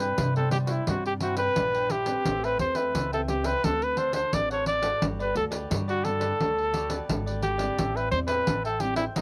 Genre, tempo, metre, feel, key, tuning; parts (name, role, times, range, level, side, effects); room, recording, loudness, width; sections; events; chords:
samba and choro; 87 BPM; 4/4; straight; G major; A4 = 440 Hz
warm trumpet; melody; 0.0-9.2 s; D#4 to D5; -29 LUFS; equal; cassette tape
cavaquinho; accompaniment; 0.0-9.2 s; D4 to G5; -40 LUFS; equal
nylon-string guitar; accompaniment; 0.0-9.2 s; G2 to B4; -39 LUFS; equal
upright bass; bass; 0.0-9.2 s; G1 to C3; -34 LUFS; equal
pandeiro; percussion; 0.2-9.2 s; -34 LUFS; equal
moderate booth ambience, RT60 0.2 s; home recording on cassette; -27 LUFS; mono
0.0-9.2 A section
0.0 Cmaj7; 2.3 Am9; 3.6 D6; 5.0 Gmaj9; 7.8 Am7